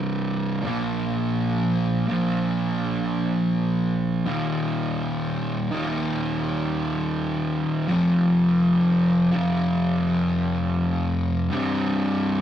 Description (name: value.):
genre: metal.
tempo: 66 BPM.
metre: 4/4.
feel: swing 60% on 8ths.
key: unclear.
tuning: A4 = 440 Hz.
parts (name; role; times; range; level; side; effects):
fuzz guitar; solo; 0.0-12.4 s; C2 to Bb3; -21 LUFS; equal; distortion.
room: wet small room reverb, RT60 0.5 s.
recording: rough rehearsal-room recording, tube saturation.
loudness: -21 LUFS.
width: side -10 dB against mid.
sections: 0.0-12.4 A section.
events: none.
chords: 0.0 C5; 0.6 Bb5; 4.3 Eb5; 7.9 F5; 11.5 C5.